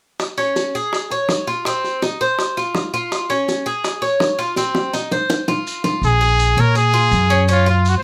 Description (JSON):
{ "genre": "latin, Cuban son and guajira", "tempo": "165 BPM", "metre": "4/4", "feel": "straight", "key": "Bb minor", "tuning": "A4 = 440 Hz", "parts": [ { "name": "bongos", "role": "percussion", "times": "0.2-5.9 s", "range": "none", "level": "-25 LUFS", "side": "equal", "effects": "none" }, { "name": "maracas", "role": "percussion", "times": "0.2-8.0 s", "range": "none", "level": "-33 LUFS", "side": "equal", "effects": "none" }, { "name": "Cuban tres", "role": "arpeggios", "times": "0.4-8.0 s", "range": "C4 to Db5", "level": "-22 LUFS", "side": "equal", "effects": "none" }, { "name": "upright bass", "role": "bass", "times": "6.0-8.0 s", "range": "Bb1 to Bb2", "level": "-18 LUFS", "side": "equal", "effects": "none" }, { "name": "bright trumpet", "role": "melody", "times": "6.1-8.0 s", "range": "F4 to C5", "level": "-19 LUFS", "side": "equal", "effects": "none" } ], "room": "light reverb", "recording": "close, detailed microphones", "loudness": "-18 LUFS", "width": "mono", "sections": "0.2-6.0 A section; 6.0-8.0 B section", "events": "drum fill 4.6-6.0", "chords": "0.2 Db; 1.7 F5; 3.1 Db; 4.6 F5; 6.0 Bbm7; 7.5 Gbmaj7(no3)" }